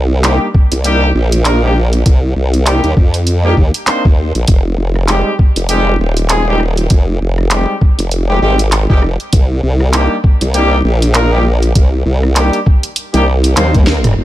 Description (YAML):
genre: glitch hop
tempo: 99 BPM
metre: 4/4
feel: swing 58% on 16ths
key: unclear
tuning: A4 = 440 Hz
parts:
  - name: formant-sweep wobble bass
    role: bass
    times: 0.0-14.2 s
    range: Eb1 to F2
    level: -12 LUFS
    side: equal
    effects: chorus
  - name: warm horn section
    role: stabs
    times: 0.2-13.7 s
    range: G3 to C5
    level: -17 LUFS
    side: equal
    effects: vintage 12-bit sampler grit, sidechain pumping, low-pass filter, tape echo
  - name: drum and bass drum kit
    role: drums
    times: 0.2-14.2 s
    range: handclaps, hi-hat, rim click, snare drum, toms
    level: -17 LUFS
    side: equal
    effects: studio reverb
  - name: electronic kick drum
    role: drums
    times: 0.5-13.8 s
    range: none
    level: -9 LUFS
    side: equal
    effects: overdrive, studio reverb
room: little or no reverb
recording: none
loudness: -10 LUFS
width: side -14 dB against mid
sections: 0.0-14.2 A section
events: drum fill 13.6-14.2; band accent 13.9-14.2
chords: 0.0 Cm7; 4.5 Fm9; 9.3 Cm7